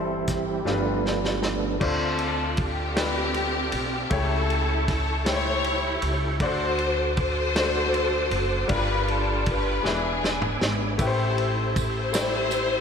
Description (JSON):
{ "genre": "slow gospel", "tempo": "52 BPM (dotted quarters)", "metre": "6/8", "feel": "straight", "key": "unclear", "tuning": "A4 = 440 Hz", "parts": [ { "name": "bright grand piano", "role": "accompaniment", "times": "0.0-12.8 s", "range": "G2 to D5", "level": "-30 LUFS", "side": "left 4 dB", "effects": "slapback echo" }, { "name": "tonewheel organ", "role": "sustained chords", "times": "0.0-12.8 s", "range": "E3 to D6", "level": "-32 LUFS", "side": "right 4 dB", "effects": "slow rotary speaker, chorus vibrato" }, { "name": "warm French horn section", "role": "sustained chords", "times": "0.0-1.8 s", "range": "E3 to E5", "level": "-39 LUFS", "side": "right 2 dB", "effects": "none" }, { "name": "upright bass", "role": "bass", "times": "0.0-12.8 s", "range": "E1 to D2", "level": "-29 LUFS", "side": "equal", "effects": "none" }, { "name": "warm soul drum kit", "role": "drums", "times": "0.3-12.7 s", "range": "crash cymbal, hi-hat, kick drum, ride cymbal, snare drum, toms", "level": "-30 LUFS", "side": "equal", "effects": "none" }, { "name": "warm studio string section", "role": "melody", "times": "1.8-12.8 s", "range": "B3 to C#5", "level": "-26 LUFS", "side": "left 2 dB", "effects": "slapback echo" }, { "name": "tambourine", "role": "percussion", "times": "11.0-12.8 s", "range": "none", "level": "-38 LUFS", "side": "right 12 dB", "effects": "none" } ], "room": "moderate lush hall reverb, RT60 2.6 s", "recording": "big arena sound", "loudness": "-22 LUFS", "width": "side -6 dB against mid", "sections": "0.0-1.8 A section; 1.8-12.8 B section", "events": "tonewheel organ solo 0.0-1.8; drum fill 0.7-1.8, 9.8-11.0", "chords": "0.0 C/G; 0.7 G7; 1.8 Dm7; 4.1 A7/C#; 6.4 D7; 8.7 G7; 9.8 E7; 11.0 Am7" }